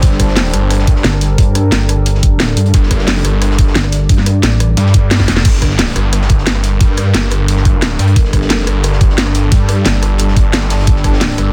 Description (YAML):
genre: dark technical drum and bass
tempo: 177 BPM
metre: 4/4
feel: straight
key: G minor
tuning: A4 = 438 Hz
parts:
  - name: deep dark ambient pad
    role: sustained chords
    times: 0.0-11.5 s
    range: G3 to D5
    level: -24 LUFS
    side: equal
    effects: chorus, built-in reverb, sidechain pumping
  - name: snarling distorted saw bass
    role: bass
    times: 0.0-11.5 s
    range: G1 to G2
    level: -16 LUFS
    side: equal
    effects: overdrive, sidechain pumping
  - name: crunchy breakbeat drum kit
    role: drums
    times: 0.0-11.5 s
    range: hi-hat, snare drum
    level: -30 LUFS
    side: equal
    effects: none
  - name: drum and bass drum kit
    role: drums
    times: 0.0-11.4 s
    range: crash cymbal, hi-hat, rim click, snare drum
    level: -18 LUFS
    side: equal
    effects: none
  - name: electronic kick drum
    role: drums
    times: 0.0-11.1 s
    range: none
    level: -14 LUFS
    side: equal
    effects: none
  - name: pulsing pluck wobble bass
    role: bass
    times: 1.0-5.4 s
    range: F1 to G2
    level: -15 LUFS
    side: equal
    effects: chorus
room: little or no reverb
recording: dense, heavily limited modern master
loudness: -12 LUFS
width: mono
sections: 0.0-5.5 A section; 5.5-11.5 A section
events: drop 0.0-5.5, 5.5-11.5; drum fill 5.2; band accent 5.4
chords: 0.0 Gmadd9